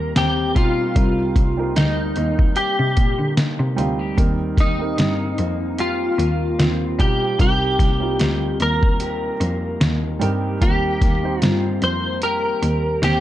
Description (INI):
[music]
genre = indie pop, bedroom pop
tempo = 74 BPM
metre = 4/4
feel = swing 55% on 16ths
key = Eb major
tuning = A4 = 440 Hz
[part]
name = clean electric guitar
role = melody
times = 0.0-13.2 s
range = Eb4 to C5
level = -22 LUFS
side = equal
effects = ensemble chorus, plate reverb, tape echo
[part]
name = electric guitar through a small old amp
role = accompaniment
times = 0.0-13.2 s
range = C3 to G4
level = -29 LUFS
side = left 4 dB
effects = wide subtle chorus, vibrato effect, plate reverb
[part]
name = warm upright piano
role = accompaniment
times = 0.0-13.2 s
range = G3 to C5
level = -28 LUFS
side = right 6 dB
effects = cassette tape, plate reverb
[part]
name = rich cello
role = bass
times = 0.0-13.2 s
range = C2 to D3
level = -22 LUFS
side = equal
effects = none
[part]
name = lo-fi sampler-style drum kit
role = drums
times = 0.2-13.2 s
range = hi-hat, kick drum, snare drum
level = -19 LUFS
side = equal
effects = none
[sound]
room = light reverb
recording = dark, warm production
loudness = -17 LUFS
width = side -13 dB against mid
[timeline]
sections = 0.0-13.2 A section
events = none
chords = 0.0 Eb6; 1.0 Cm7; 4.2 Eb6; 7.4 Cm7; 10.6 Eb6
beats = 0.16 | 0.96 1.76 2.57 3.37 | 4.18 4.98 5.79 6.59 | 7.40 8.20 9.01 9.81 | 10.62 11.42 12.23 13.03